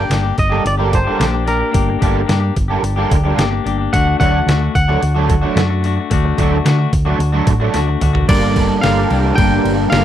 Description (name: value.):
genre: indie rock.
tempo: 110 BPM.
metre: 4/4.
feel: straight.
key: G minor.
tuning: A4 = 438 Hz.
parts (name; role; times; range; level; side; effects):
twangy electric guitar; melody; 0.0-10.0 s; Bb4 to G5; -20 LUFS; equal; slapback echo.
biting overdriven guitar; riff; 0.0-10.0 s; G3 to G4; -20 LUFS; left 10 dB; none.
hollow-body short-scale fingered electric bass; bass; 0.0-10.0 s; G1 to D3; -17 LUFS; equal; none.
fuzz guitar; riff; 0.1-10.0 s; G2 to D4; -19 LUFS; right 6 dB; distortion, ensemble chorus, slapback echo.
detuned 8-bit digital drum machine; drums; 0.1-10.0 s; crash cymbal, hi-hat, kick drum, snare drum, toms; -18 LUFS; equal; none.
room: little or no reverb.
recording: dry, close 1970s-style studio recording.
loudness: -13 LUFS.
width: side -11 dB against mid.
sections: 0.0-8.3 A section; 8.3-10.0 B section.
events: drum fill 7.7-8.3.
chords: 0.0 Gm; 3.9 D; 8.3 Gm.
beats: 0.11 0.66 1.20 | 1.75 2.29 2.84 3.38 | 3.93 4.47 5.02 5.56 | 6.11 6.65 7.19 7.74 | 8.28 8.83 9.37 9.91.